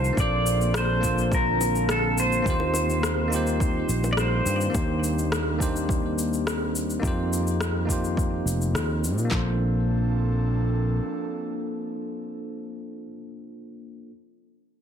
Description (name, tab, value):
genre	sunset chillout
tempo	105 BPM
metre	4/4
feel	straight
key	Bb major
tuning	A4 = 440 Hz
part	pedal steel guitar	melody	0.0-4.7 s	A4 to D5	-27 LUFS	equal	ping-pong delay
part	bell-like tine electric piano	accompaniment	0.0-14.1 s	Bb3 to C5	-31 LUFS	equal	auto-pan, low-pass filter, ping-pong delay
part	airy breathy pad	sustained chords	0.0-12.4 s	D3 to A5	-32 LUFS	equal	chorus
part	sustaining fretless electric bass	bass	0.0-11.0 s	F1 to Bb2	-26 LUFS	equal	none
part	electronic shaker and rim click	drums	0.0-9.3 s	none	-31 LUFS	left 1 dB	overdrive
part	deep house drum kit	drums	0.2-9.4 s	handclaps, kick drum, snare drum	-27 LUFS	equal	overdrive
part	bongos	percussion	1.6-4.1 s	none	-38 LUFS	equal	none
room	light reverb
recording	dense, heavily limited modern master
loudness	-22 LUFS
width	side -8 dB against mid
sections	0.2-9.3 A section; 9.3-11.6 B section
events	break 0.0; filter sweep on analog synth pad 0.2-9.3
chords	0.2 Bbmaj9; 2.5 Eb69; 4.7 Cm7/Eb; 7.0 F7sus4; 9.3 Bbmaj9